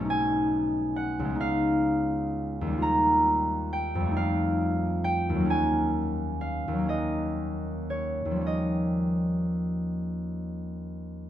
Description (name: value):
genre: classical, solo harp piece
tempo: 36-47 BPM (dotted quarters)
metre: 6/8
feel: rubato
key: unclear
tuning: A4 = 440 Hz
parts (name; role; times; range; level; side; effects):
- concert harp; solo; 0.0-11.3 s; Cb2 to Bb5; -25 LUFS; equal; none
room: moderate recital hall reverb, RT60 1.4 s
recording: close, detailed microphones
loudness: -25 LUFS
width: side -11 dB against mid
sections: 0.0-11.3 A section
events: none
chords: 0.1 Cb9; 1.4 Db9; 2.8 Eb9; 4.1 F9; 5.5 Ebm7; 8.5 Eb9